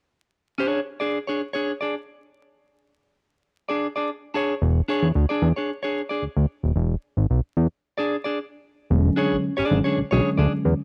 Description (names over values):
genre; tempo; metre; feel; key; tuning
funk; 112 BPM; 4/4; straight; E mixolydian; A4 = 440 Hz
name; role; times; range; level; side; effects
clean electric guitar; accompaniment; 0.6-10.5 s; D4 to D5; -27 LUFS; equal; none
fat analog bass; bass; 4.6-10.7 s; D#1 to E2; -22 LUFS; equal; none
mellow tine electric piano; stabs; 8.9-10.8 s; D3 to C#4; -26 LUFS; equal; none
room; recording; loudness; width
light reverb; home recording on cassette, vinyl crackle; -24 LUFS; mono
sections
0.3-8.9 A section; 8.9-10.8 B section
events
stop 8.4-8.9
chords
0.3 E6; 8.9 E13